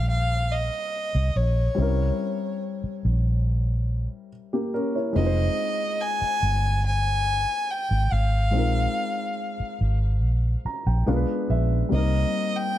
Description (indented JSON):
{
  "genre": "contemporary R&B",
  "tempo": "71 BPM",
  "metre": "4/4",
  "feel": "straight",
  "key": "C minor",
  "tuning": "A4 = 440 Hz",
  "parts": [
    { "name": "dark fiddle", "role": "melody", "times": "0.0-12.8 s", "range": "Db5 to Ab5", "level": "-27 LUFS", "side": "left 1 dB", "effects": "digital delay" },
    { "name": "dark baby grand piano", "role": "accompaniment", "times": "0.0-12.8 s", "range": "C3 to Bb5", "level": "-29 LUFS", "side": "left 2 dB", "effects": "none" },
    { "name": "vintage muted fingered electric bass", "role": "bass", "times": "0.0-12.2 s", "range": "F1 to C2", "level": "-22 LUFS", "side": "equal", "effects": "none" }
  ],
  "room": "studio ambience",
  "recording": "dark, warm production",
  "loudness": "-22 LUFS",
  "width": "side -13 dB against mid",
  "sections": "0.0-12.8 A section",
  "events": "grand piano fill 10.2-11.9",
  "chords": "0.0 Cm7; 1.8 C7b9; 5.2 Fm7; 8.5 Bb9sus4; 11.1 Bdim7; 11.9 Cm7",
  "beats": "0.09 0.93 | 1.78 2.62 3.47 4.31 | 5.16 6.00 6.85 7.69 | 8.54 9.38 10.23 11.07 | 11.92 12.77"
}